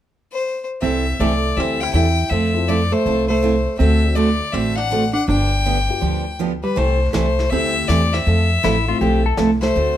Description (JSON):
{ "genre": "country, western swing", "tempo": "161 BPM", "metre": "4/4", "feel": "swing 64% on 8ths", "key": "C major", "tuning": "A4 = 440 Hz", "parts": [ { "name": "clear fiddle", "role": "melody", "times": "0.3-10.0 s", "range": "B4 to G5", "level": "-22 LUFS", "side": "left 4 dB", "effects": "none" }, { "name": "archtop guitar, miked and amplified", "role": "second line", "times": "0.8-10.0 s", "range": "G3 to E4", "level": "-24 LUFS", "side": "right 3 dB", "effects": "none" }, { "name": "picked steel-string acoustic guitar", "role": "accompaniment", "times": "0.8-10.0 s", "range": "C3 to A4", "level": "-22 LUFS", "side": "right 3 dB", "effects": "none" }, { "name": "upright bass", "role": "bass", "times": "0.8-10.0 s", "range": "G1 to F2", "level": "-20 LUFS", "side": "equal", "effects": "none" }, { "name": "dark upright piano", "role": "accompaniment", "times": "1.6-9.0 s", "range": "A3 to A4", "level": "-28 LUFS", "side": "left 6 dB", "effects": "none" }, { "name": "vintage brush drum kit", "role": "drums", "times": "6.8-10.0 s", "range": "brushed snare drum, hi-hat, snare drum", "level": "-28 LUFS", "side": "left 1 dB", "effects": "none" }, { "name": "clean lap steel guitar", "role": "second line", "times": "8.6-9.5 s", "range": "E4 to A4", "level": "-23 LUFS", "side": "left 8 dB", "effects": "none" } ], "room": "moderate studio reverb, RT60 0.7 s", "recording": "none", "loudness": "-16 LUFS", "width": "side -11 dB against mid", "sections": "0.8-6.8 A section; 6.8-10.0 B section", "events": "none", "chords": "0.0 N.C.; 0.8 C6; 2.3 Fmaj7; 3.8 D7; 5.3 G7; 6.8 C6; 8.3 Fmaj7", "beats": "0.08 0.45 | 0.82 1.19 1.56 1.94 | 2.31 2.68 3.05 3.42 | 3.80 4.17 4.54 4.91 | 5.28 5.66 6.03 6.40 | 6.77 7.14 7.52 7.89 | 8.26 8.63 9.01 9.38 | 9.75" }